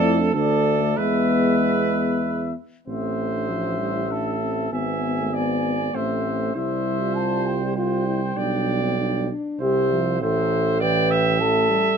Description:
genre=classical, brass quintet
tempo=98 BPM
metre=3/4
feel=rubato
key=A minor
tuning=A4 = 441 Hz
part: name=mellow cornet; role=melody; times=0.0-12.0 s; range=D5 to A5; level=-28 LUFS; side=left 11 dB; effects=none
part: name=clear trumpet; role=second line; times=0.0-12.0 s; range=A4 to E5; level=-27 LUFS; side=right 6 dB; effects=none
part: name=dark French horn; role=accompaniment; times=0.0-12.0 s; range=A3 to B4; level=-26 LUFS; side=left 4 dB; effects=none
part: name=mellow euphonium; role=accompaniment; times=0.0-12.0 s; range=E3 to B3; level=-27 LUFS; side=right 4 dB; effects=none
part: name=warm tuba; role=bass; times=0.0-12.0 s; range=G#1 to F2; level=-25 LUFS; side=right 4 dB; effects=none
room=light reverb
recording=minimal, uncompressed stereo recording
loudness=-20 LUFS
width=side -6 dB against mid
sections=0.0-2.9 A section; 2.9-12.0 B section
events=none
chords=0.0 Dm/F; 1.0 E; 2.9 Am; 4.7 E/G#; 5.9 Am; 6.6 C; 8.4 G/B; 9.6 C; 10.2 Am

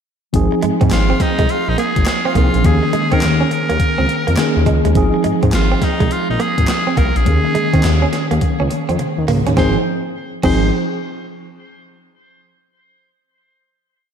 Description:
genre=R&B, new jack swing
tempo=104 BPM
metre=4/4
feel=swing 64% on 16ths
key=Ab major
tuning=A4 = 441 Hz
part: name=tine electric piano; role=accompaniment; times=0.3-10.7 s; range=Eb3 to Ab4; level=-19 LUFS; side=equal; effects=medium stereo tremolo
part: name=smooth gliding synth bass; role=bass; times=0.3-10.7 s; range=Ab1 to Eb3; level=-17 LUFS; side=left 1 dB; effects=none
part: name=gated 80s digital drum machine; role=drums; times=0.3-10.6 s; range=crash cymbal, handclaps, hi-hat, kick drum, snare drum, toms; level=-19 LUFS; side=equal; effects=gated reverb, gated reverb snare, overdrive
part: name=direct-recorded clean electric guitar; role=riff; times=0.5-10.6 s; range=Ab3 to Db4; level=-22 LUFS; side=right 4 dB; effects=lush chorus
part: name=raspy tenor saxophone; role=melody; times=0.9-10.7 s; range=Eb4 to C5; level=-22 LUFS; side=equal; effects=diffuse ambient delay
room=wet lush hall reverb, RT60 1.9 s, digital ambience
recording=dreamy mix soaked in reverb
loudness=-13 LUFS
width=side -8 dB against mid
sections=0.3-9.6 verse; 9.6-11.9 final chord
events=drum fill 8.4-9.6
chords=0.3 Ab6; 2.6 Eb7sus4; 5.0 Ab6; 7.3 Eb7sus4; 9.6 Ab6

